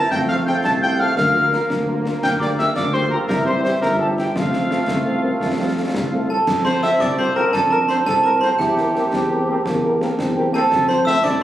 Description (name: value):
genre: military-style march for wind band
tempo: 113 BPM (dotted quarters)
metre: 6/8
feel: straight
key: F major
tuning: A4 = 440 Hz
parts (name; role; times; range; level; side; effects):
- mellow cornet; melody; 0.0-11.4 s; F4 to A5; -23 LUFS; right 1 dB; none
- dark woodwind section; second line; 0.0-11.4 s; G4 to F5; -26 LUFS; left 1 dB; none
- clear trombone section; sustained chords; 0.0-11.1 s; E3 to C4; -28 LUFS; equal; none
- dark tuba; bass; 0.0-11.4 s; G1 to F2; -24 LUFS; right 1 dB; none
- bright wooden piccolo; second line; 0.1-6.3 s; F5 to A6; -24 LUFS; left 2 dB; none
- concert snare drum, concert bass drum and clash cymbals; drums; 0.1-11.4 s; none; -28 LUFS; left 1 dB; none
- mellow French horn section; accompaniment; 0.3-11.4 s; Bb3 to Bb4; -29 LUFS; left 3 dB; none
- warm euphonium; second line; 4.9-11.4 s; F3 to E4; -26 LUFS; right 1 dB; none
- glockenspiel with brass mallets; second line; 6.3-11.4 s; G5 to E6; -19 LUFS; right 2 dB; none
room: wet recital hall reverb, RT60 1.5 s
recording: recorded on a phone in the room, studio reverb, compression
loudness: -16 LUFS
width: side -13 dB against mid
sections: 0.0-6.5 A section; 6.5-11.4 A section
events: none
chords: 0.1 F; 1.2 Bb/D; 2.2 Gm7/D; 3.3 C; 4.4 F; 8.6 C7/E; 10.7 F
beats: | 0.12 0.65 | 1.18 1.71 | 2.24 2.77 | 3.30 3.83 | 4.36 4.89 | 5.42 5.95 | 6.48 7.01 | 7.54 8.06 | 8.60 9.12 | 9.65 10.18 | 10.71 11.24